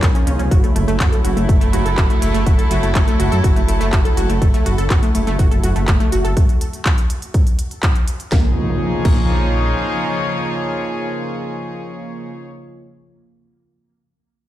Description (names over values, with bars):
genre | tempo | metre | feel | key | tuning
melodic techno | 123 BPM | 4/4 | straight | unclear | A4 = 440 Hz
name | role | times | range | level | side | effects
sweeping resonant pad | sustained chords | 0.0-12.3 s | Db3 to F4 | -25 LUFS | equal | chorus, sidechain pumping
wide unison pluck | arpeggios | 0.0-9.2 s | A3 to A4 | -23 LUFS | right 1 dB | sidechain pumping, dub echo
dark detuned saw bass | bass | 0.0-9.7 s | Gb1 to Gb2 | -19 LUFS | equal | sidechain pumping
electronic kick drum | drums | 0.0-9.2 s | none | -15 LUFS | equal | none
techno drum kit | drums | 0.0-9.2 s | crash cymbal, handclaps, hi-hat, snare drum | -26 LUFS | equal | sidechain pumping on hats, sidechain pumping on cymbals
rich chamber string section | texture | 0.0-12.5 s | Eb4 to Db5 | -26 LUFS | equal | sidechain pumping
impact | sound effects | 8.3-12.3 s | none | -26 LUFS | equal | none
room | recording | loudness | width
little or no reverb | played on a big sound system in a bare room, stone room reverb | -14 LUFS | side -13 dB against mid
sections
0.0-8.3 A section; 8.3-12.2 B section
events
drop 0.0-8.3; band accent 7.8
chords
0.0 Bbm; 0.5 Gbm7; 8.3 Bbm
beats
0.03 | 0.51 1.00 1.49 1.98 | 2.47 2.95 3.44 3.93 | 4.42 4.91 5.39 5.88 | 6.37 6.86 7.34 7.83 | 8.32 8.81 9.29 9.78 | 10.27 10.76 11.25 11.73